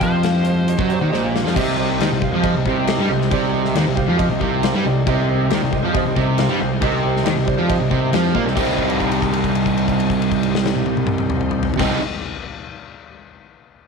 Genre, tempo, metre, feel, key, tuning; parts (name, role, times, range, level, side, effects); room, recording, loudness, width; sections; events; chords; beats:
classic rock; 137 BPM; 4/4; straight; C minor; A4 = 439 Hz
biting lead guitar; melody; 0.0-1.3 s; C5; -27 LUFS; equal; overdrive, slapback echo
clear upright piano; accompaniment; 0.0-12.0 s; G4 to G5; -26 LUFS; right 11 dB
overdriven semi-hollow guitar; riff; 0.0-12.0 s; Bb2 to Eb4; -22 LUFS; left 12 dB; phaser
overdriven semi-hollow guitar; riff; 0.0-12.0 s; Bb2 to Eb4; -21 LUFS; right 11 dB
fuzz picked electric bass; bass; 0.0-12.0 s; Bb1 to Bb2; -25 LUFS; equal; overdrive
huge arena drum kit; drums; 0.0-11.9 s; crash cymbal, hi-hat, kick drum, snare drum, toms; -23 LUFS; left 5 dB
bright tonewheel organ; sustained chords; 1.6-12.0 s; Eb4 to C5; -32 LUFS; equal
light reverb, small room ambience; 1960s-style stereo with parts hard left and right; -16 LUFS; side -5 dB against mid
0.0-1.6 A section; 1.6-8.6 B section; 8.6-12.1 C section
drum fill 1.1-1.6; upright piano fill 4.4-5.1, 7.9-8.6; held note 8.6-11.8
0.0 Cm
0.23 0.68 1.12 | 1.56 2.00 2.44 2.88 | 3.32 3.76 4.20 4.63 | 5.07 5.51 5.95 6.38 | 6.82 7.26 7.69 8.13 | 8.57 9.00 9.44 9.88 | 10.31 10.75 11.18 11.62